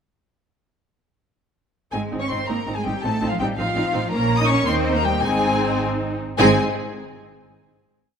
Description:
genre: classical, dramatic, fast romantic movement for symphony orchestra.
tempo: 101-112 BPM (dotted quarters).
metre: 6/8.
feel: rubato.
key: Ab major.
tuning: A4 = 440 Hz.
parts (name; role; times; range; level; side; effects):
rich studio violin section; melody; 1.9-6.6 s; F5 to Eb6; -25 LUFS; left 4 dB; none.
warm symphonic violin section; second line; 1.9-6.6 s; F4 to Eb5; -27 LUFS; left 2 dB; none.
warm symphonic viola section; accompaniment; 1.9-6.6 s; Bb3 to Eb4; -24 LUFS; equal; none.
warm symphonic cello section; bass; 1.9-6.6 s; F3 to Eb4; -26 LUFS; right 3 dB; none.
warm symphonic double bass section; bass; 1.9-6.6 s; Ab1 to Eb2; -26 LUFS; right 3 dB; none.
room: moderate scoring stage reverb, RT60 1.6 s.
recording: minimal, uncompressed stereo recording.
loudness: -19 LUFS.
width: side -7 dB against mid.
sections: 1.9-6.4 A section; 6.4-7.5 final chord.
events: none.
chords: 1.9 Ab; 3.0 F7/A; 4.1 Bbm; 4.7 Eb; 5.2 Ab.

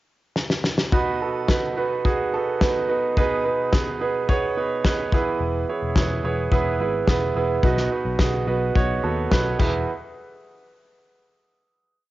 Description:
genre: piano-driven pop.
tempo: 107 BPM.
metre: 4/4.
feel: straight.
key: unclear.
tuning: A4 = 440 Hz.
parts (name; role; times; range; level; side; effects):
loose indie drum kit; drums; 0.4-9.7 s; crash cymbal, kick drum, snare drum; -22 LUFS; left 1 dB; cassette tape.
bright grand piano; accompaniment; 0.9-9.9 s; E2 to C#5; -22 LUFS; right 3 dB; cassette tape.
vintage muted picked electric bass; bass; 5.4-9.9 s; E1 to D#2; -26 LUFS; left 1 dB; none.
room: moderate spring reverb, RT60 2.5 s.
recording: home recording on cassette, nothing above 7.5 kHz.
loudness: -20 LUFS.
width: side -16 dB against mid.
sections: 0.0-0.9 pickup bar; 0.9-9.9 verse; 9.9-12.1 final hit.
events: drum fill 0.4-0.9.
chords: 0.0 N.C.; 0.9 B; 3.2 G#m/B; 5.1 E; 7.6 B; 9.6 E; 9.9 N.C..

